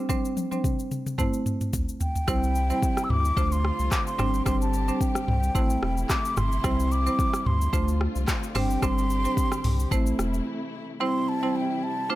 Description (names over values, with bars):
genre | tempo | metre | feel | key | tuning
afrobeats | 110 BPM | 4/4 | swing 55% on 16ths | C major | A4 = 440 Hz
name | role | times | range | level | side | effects
marimba with medium hard mallets | accompaniment | 0.0-12.2 s | G3 to C5 | -29 LUFS | right 2 dB | none
afro-pop drum kit | drums | 0.1-10.5 s | handclaps, hi-hat, kick drum, rim click, shaker, toms | -27 LUFS | equal | none
mellow hollow concert flute | melody | 2.0-12.2 s | G5 to E6 | -30 LUFS | equal | none
dark studio string section | sustained chords | 2.3-12.2 s | C3 to G4 | -36 LUFS | left 3 dB | none
warm sub bass | bass | 2.3-10.4 s | E1 to D2 | -26 LUFS | equal | none
room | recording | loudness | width
small room reverb | none | -23 LUFS | side -15 dB against mid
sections
0.0-2.3 A section; 2.3-11.0 B section; 11.0-12.2 C section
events
drum fill 0.1-2.3; break 10.5-11.0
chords
0.0 Gsus4; 1.2 Am; 2.3 C; 3.4 Dm7; 4.2 Gsus4; 5.6 Am; 6.6 C; 7.7 Dm7; 8.6 Gsus4; 9.9 Am; 11.0 C